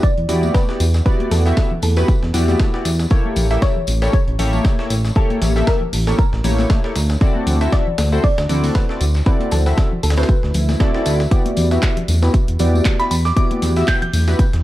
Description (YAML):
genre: deep house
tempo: 117 BPM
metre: 4/4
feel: swing 56% on 16ths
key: E minor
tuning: A4 = 441 Hz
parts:
  - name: soft round pluck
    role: melody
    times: 0.0-11.0 s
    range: A4 to D5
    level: -27 LUFS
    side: equal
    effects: lush chorus, cassette tape, analog delay
  - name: chorused polysynth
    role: stabs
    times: 0.0-14.4 s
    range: A3 to E5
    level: -22 LUFS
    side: equal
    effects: sidechain pumping, tape echo
  - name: breakbeat sampler-style drum kit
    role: drums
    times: 0.0-14.6 s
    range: hi-hat, snare drum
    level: -31 LUFS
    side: equal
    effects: high-pass filter on hats, high-pass filter on snare
  - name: electronic kick drum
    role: drums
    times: 0.0-14.5 s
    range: none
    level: -16 LUFS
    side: equal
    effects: none
  - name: tambourine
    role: percussion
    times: 0.0-14.5 s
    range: none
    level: -34 LUFS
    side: left 3 dB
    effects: none
  - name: smooth gliding synth bass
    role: bass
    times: 0.2-14.6 s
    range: A1 to E2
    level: -16 LUFS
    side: equal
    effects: sidechain pumping
  - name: punchy analog drum machine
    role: drums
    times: 0.3-14.6 s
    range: handclaps, hi-hat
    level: -29 LUFS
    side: equal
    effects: none
  - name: congas and bongos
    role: percussion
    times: 0.3-14.3 s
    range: none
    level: -27 LUFS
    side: left 2 dB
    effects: none
  - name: swell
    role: sound effects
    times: 10.5-11.3 s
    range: none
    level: -29 LUFS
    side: right 3 dB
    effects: none
  - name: glassy synth bell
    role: melody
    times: 13.0-14.1 s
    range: B5 to G6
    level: -22 LUFS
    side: right 1 dB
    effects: chorus, tremolo, tape echo
room: little or no reverb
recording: cassette tape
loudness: -14 LUFS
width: side -15 dB against mid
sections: 0.0-14.6 A section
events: swell 10.5-11.3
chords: 0.0 Em9; 3.1 A7b9; 7.0 D7; 11.3 Em9